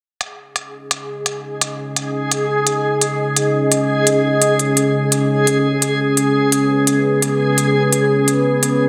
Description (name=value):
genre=half-time drum and bass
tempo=171 BPM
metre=4/4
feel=swing 57% on 16ths, half-time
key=unclear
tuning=A4 = 440 Hz
part: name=deep dark ambient pad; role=sustained chords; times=1.5-8.9 s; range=C#4 to D#5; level=-20 LUFS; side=equal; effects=chorus, built-in reverb
part: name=electronic hi-hat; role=drums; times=0.2-8.7 s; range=none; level=-22 LUFS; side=equal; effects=low-pass filter on hats, low-pass filter on room
part: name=backwards swelling texture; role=texture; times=1.1-8.9 s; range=G#4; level=-21 LUFS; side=equal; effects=built-in reverb
room=wet lush hall reverb, RT60 2.3 s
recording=heavily compressed radio sound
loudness=-17 LUFS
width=mono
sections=0.2-8.9 A section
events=filter sweep on ambient pad 0.2-8.9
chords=0.2 C#sus2